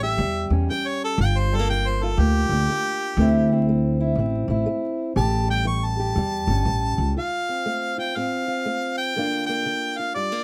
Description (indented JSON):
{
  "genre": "acoustic country blues, solo or duo",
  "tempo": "121 BPM",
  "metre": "4/4",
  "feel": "swing 64% on 8ths",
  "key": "D minor",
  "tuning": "A4 = 440 Hz",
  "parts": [
    { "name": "bright harmonica", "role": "melody", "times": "0.0-10.4 s", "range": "G4 to C#6", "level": "-28 LUFS", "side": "equal", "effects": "none" },
    { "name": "fingerpicked old ladder-braced acoustic guitar", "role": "accompaniment", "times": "0.0-10.4 s", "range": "E2 to G4", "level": "-29 LUFS", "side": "equal", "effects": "none" },
    { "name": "upright bass", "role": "bass", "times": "0.0-7.1 s", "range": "G1 to E2", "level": "-24 LUFS", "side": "equal", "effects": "none" }
  ],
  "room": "light reverb",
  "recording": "vinyl crackle",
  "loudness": "-23 LUFS",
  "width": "mono",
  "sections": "0.0-7.1 A section; 7.1-10.4 B section",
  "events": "harmonica solo 0.0-7.1",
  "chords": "0.0 A7; 1.2 Gm7; 3.2 Dsus2; 5.2 A7; 7.1 Dm7; 9.1 Gm7"
}